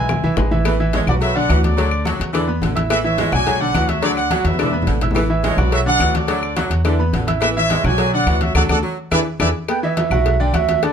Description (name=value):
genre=latin, salsa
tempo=213 BPM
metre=4/4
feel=straight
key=unclear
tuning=A4 = 439 Hz
part: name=clear trumpet section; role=melody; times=0.0-9.5 s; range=A4 to G#5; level=-20 LUFS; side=right 1 dB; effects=plate reverb
part: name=bright grand piano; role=accompaniment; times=0.0-10.9 s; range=D3 to E6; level=-22 LUFS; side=equal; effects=none
part: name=upright bass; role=bass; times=0.0-10.9 s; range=A1 to E2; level=-20 LUFS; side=equal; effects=none
part: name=bongos and cowbell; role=percussion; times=0.1-10.9 s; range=none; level=-27 LUFS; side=left 6 dB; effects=none
part: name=claves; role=percussion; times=0.1-10.7 s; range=none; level=-30 LUFS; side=left 7 dB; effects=none
part: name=congas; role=percussion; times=0.1-10.9 s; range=none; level=-24 LUFS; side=left 2 dB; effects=none
part: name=bright saxophone section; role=second line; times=0.7-9.5 s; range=D3 to G#3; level=-25 LUFS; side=right 2 dB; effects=none
part: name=mellow silver concert flute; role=melody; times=9.7-10.9 s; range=E5 to A5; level=-20 LUFS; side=right 10 dB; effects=plate reverb
room=light reverb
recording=dark, warm production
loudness=-15 LUFS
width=side -8 dB against mid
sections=0.7-9.7 A section; 9.7-10.9 B section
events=drum fill 0.1-0.7, 4.5-5.2, 9.3-9.7; band accent 8.6-9.7; flute solo 9.7-10.9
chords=0.0 E; 0.7 Asus2; 1.2 Bm7; 1.8 D; 2.3 E5; 2.9 Asus2; 3.5 Bm; 4.0 D; 4.6 E5; 5.2 Asus2; 5.7 Bm7; 6.3 D; 6.9 E5; 7.4 Asus2; 8.0 Bm; 8.6 D; 9.1 E7; 9.7 Emadd9; 10.3 Bm